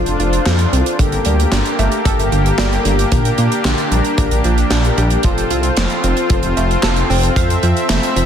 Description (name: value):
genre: synthwave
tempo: 113 BPM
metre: 4/4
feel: straight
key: F major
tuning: A4 = 440 Hz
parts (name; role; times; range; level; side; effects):
- soft supersaw; sustained chords; 0.0-8.3 s; Bb3 to E5; -21 LUFS; equal; sidechain pumping
- analog pluck; arpeggios; 0.0-8.3 s; D3 to F5; -22 LUFS; right 3 dB; chorus, tape echo
- mellow synth brass; stabs; 0.0-8.3 s; D4 to C5; -21 LUFS; left 3 dB; chorus, tape echo
- wide detuned saw bass; bass; 0.0-8.3 s; F1 to Bb2; -17 LUFS; equal; chorus, sidechain pumping
- modern studio drum kit; drums; 0.1-8.3 s; handclaps, hi-hat, snare drum; -21 LUFS; right 1 dB; none
- kick drum; drums; 1.0-7.5 s; none; -19 LUFS; equal; none
room: light reverb, small room ambience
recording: dense, heavily limited modern master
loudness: -13 LUFS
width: side -8 dB against mid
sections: 0.0-8.3 A section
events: none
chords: 0.0 F; 1.0 Gmadd9; 3.1 Bb6; 5.2 F